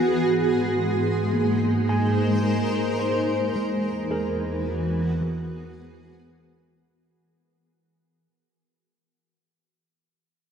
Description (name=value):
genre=ambient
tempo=54 BPM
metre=3/4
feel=straight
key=unclear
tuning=A4 = 440 Hz
part: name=granular cloud pad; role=sustained chords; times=0.0-6.9 s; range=E3 to C5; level=-23 LUFS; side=equal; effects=built-in reverb
part: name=dark symphonic double bass section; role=bass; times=0.0-6.8 s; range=E2 to Ab2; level=-30 LUFS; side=equal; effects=none
part: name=tine electric piano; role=arpeggios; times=1.3-8.3 s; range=E3 to Ab5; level=-28 LUFS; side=right 1 dB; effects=medium tremolo, tape echo
room=wet cathedral reverb, RT60 5.4 s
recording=in a vast, echoing space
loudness=-21 LUFS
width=side -7 dB against mid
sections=0.0-6.9 A section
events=fade-in on double bass section 0.0-6.9; fade-out 2.5-6.9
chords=0.2 Ab; 3.6 E